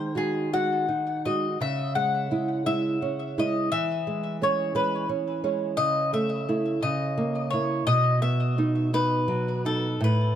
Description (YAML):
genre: romantic duo for mandolin and classical guitar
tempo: 57 BPM (dotted quarters)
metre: 6/8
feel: rubato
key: C# minor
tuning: A4 = 439 Hz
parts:
  - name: mandolin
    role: melody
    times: 0.0-10.4 s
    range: G#4 to F#5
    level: -27 LUFS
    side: left 4 dB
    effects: tape echo
  - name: nylon-string guitar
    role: accompaniment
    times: 0.0-10.4 s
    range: A2 to F#4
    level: -25 LUFS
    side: right 2 dB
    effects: none
room: moderate recital hall reverb, RT60 1.7 s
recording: close, detailed microphones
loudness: -23 LUFS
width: side -10 dB against mid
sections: 0.0-10.4 A section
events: none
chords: 0.0 G#7(no3)/D#; 1.6 C#m; 3.7 C#m/E; 5.8 A/C#; 6.8 C#m69; 7.9 B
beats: 0.53 | 1.60 2.66 | 3.72 4.75 | 5.79 6.83 | 7.88 8.94 | 10.03